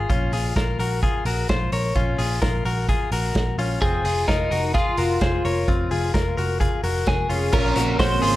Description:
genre	jangly indie pop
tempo	129 BPM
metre	4/4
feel	straight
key	Bb minor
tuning	A4 = 439 Hz
part	direct-recorded clean electric guitar	arpeggios	0.0-8.4 s	C4 to Db5	-25 LUFS	left 4 dB	spring reverb, slapback echo, plate reverb
part	vintage muted picked electric bass	bass	0.0-8.4 s	F1 to Bb1	-25 LUFS	right 1 dB	none
part	vintage drum kit	drums	0.1-8.3 s	crash cymbal, hi-hat, kick drum, snare drum	-24 LUFS	right 1 dB	none
part	twelve-string electric guitar	melody	3.8-8.4 s	Eb4 to C5	-24 LUFS	left 1 dB	slapback echo
part	picked twelve-string acoustic guitar	accompaniment	7.5-8.4 s	Bb2 to C5	-28 LUFS	right 6 dB	plate reverb
part	string machine, full ensemble	sustained chords	7.5-8.4 s	Db3 to C4	-28 LUFS	right 2 dB	ensemble chorus
room	light reverb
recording	none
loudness	-19 LUFS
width	side -15 dB against mid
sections	0.0-7.5 A section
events	none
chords	0.1 Bbm; 3.8 Fm; 7.5 Bbmadd9

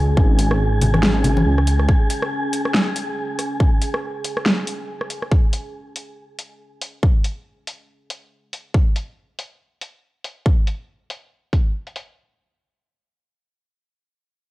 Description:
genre	deep dubstep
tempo	140 BPM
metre	4/4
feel	swing 58% on 16ths, half-time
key	unclear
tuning	A4 = 443 Hz
part	dark analog pad	sustained chords	0.0-8.8 s	C#4 to G#4	-28 LUFS	equal	wide subtle chorus
part	dark detuned saw bass	bass	0.0-1.9 s	G#1 to C#2	-18 LUFS	equal	tube saturation
part	wind-like tuned noise texture	texture	0.0-5.3 s	G#4 to G#5	-28 LUFS	equal	built-in reverb
part	electronic kick drum	drums	0.2-11.6 s	none	-16 LUFS	equal	studio reverb
part	dubstep drum kit	drums	0.4-12.1 s	hi-hat, rim click, snare drum	-23 LUFS	equal	low-pass filter on cymbals, studio reverb, low-pass filter on hats, low-pass filter on snare
part	congas	percussion	0.8-1.4 s	none	-22 LUFS	left 1 dB	none
room	digital ambience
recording	dry, gritty hardware recording, cassette tape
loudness	-17 LUFS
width	side -18 dB against mid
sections	0.0-12.2 A section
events	filter sweep on drum 0.0-12.2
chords	0.0 C#5

